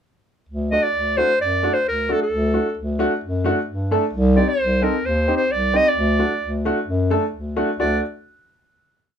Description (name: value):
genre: klezmer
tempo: 132 BPM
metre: 4/4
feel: straight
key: D phrygian dominant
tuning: A4 = 437 Hz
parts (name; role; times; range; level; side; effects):
- dark bass clarinet; bass; 0.5-8.0 s; C2 to G2; -21 LUFS; left 1 dB; none
- bright clarinet; melody; 0.7-8.0 s; A4 to Eb5; -19 LUFS; right 1 dB; none
- clear upright piano; accompaniment; 0.7-8.0 s; A3 to A4; -22 LUFS; equal; none
room: moderate studio reverb, RT60 0.5 s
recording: minimal, uncompressed stereo recording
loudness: -18 LUFS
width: side -8 dB against mid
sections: 0.5-7.8 A section; 7.8-9.2 final chord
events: none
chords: 0.5 D; 4.1 Cm; 6.0 D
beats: | 0.50 0.95 1.40 1.86 | 2.31 2.77 3.23 3.68 | 4.14 4.59 5.05 5.51 | 5.96 6.42 6.88 7.34 | 7.79